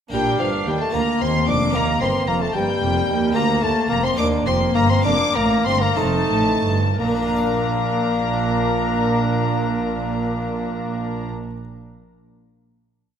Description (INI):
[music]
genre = classical, baroque-style concerto movement with solo episodes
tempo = 57-75 BPM (dotted quarters)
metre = 6/8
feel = straight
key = Bb major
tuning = A4 = 440 Hz
[part]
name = mellow bassoon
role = melody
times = 0.1-11.3 s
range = F3 to D4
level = -24 LUFS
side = left 3 dB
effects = none
[part]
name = rich chamber violin section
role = melody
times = 0.1-11.3 s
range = F5 to D6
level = -27 LUFS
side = left 4 dB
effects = none
[part]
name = warm chamber violin section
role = second line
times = 0.1-11.3 s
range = Bb4 to D6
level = -27 LUFS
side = left 2 dB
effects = none
[part]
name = dark chamber viola section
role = accompaniment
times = 0.1-11.3 s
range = Bb3 to Eb4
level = -27 LUFS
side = equal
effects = none
[part]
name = harpsichord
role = accompaniment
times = 0.1-11.6 s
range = D2 to F5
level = -31 LUFS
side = right 1 dB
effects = none
[part]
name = rich chamber double bass section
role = bass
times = 0.1-11.3 s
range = F1 to Eb2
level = -25 LUFS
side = right 4 dB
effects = none
[part]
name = warm chamber cello section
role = bass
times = 0.1-11.3 s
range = D2 to Bb2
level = -25 LUFS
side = right 3 dB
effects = none
[sound]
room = wet concert hall reverb, RT60 2.0 s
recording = none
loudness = -18 LUFS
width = side -8 dB against mid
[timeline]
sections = 0.1-7.0 ritornello; 7.0-11.2 final chord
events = slowing down 2.5-7.0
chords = 0.1 Bb; 0.9 Bb/D; 1.7 Eb; 3.4 Bb/D; 4.2 F13sus4; 5.1 Bb/F; 6.0 F7; 7.0 Bb